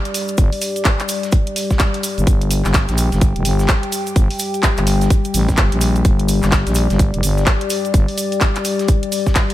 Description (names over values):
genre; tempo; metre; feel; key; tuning
bass house; 127 BPM; 4/4; swing 61% on 16ths; G minor; A4 = 440 Hz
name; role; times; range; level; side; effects
dark analog pad; sustained chords; 0.0-9.5 s; G3 to G5; -22 LUFS; left 4 dB; chorus, vintage 12-bit sampler grit, sidechain pumping
dusty soul sampler-style drum kit; drums; 0.1-9.5 s; hi-hat, snare drum; -34 LUFS; left 1 dB; none
garage drum kit; drums; 0.1-9.5 s; handclaps, hi-hat; -22 LUFS; equal; small room ambience
cabasa; percussion; 0.1-9.5 s; none; -28 LUFS; right 4 dB; none
growling FM bass; bass; 0.4-8.1 s; F1 to Bb1; -17 LUFS; equal; tube saturation, sidechain pumping
electronic kick drum; drums; 0.4-9.5 s; none; -15 LUFS; equal; small room ambience
room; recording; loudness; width
digital ambience; none; -14 LUFS; side -14 dB against mid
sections
0.0-9.5 A section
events
none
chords
0.0 G5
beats
| 0.38 0.85 1.32 1.80 | 2.27 2.74 3.21 3.69 | 4.16 4.63 5.10 5.58 | 6.05 6.52 6.99 7.47 | 7.94 8.41 8.88 9.36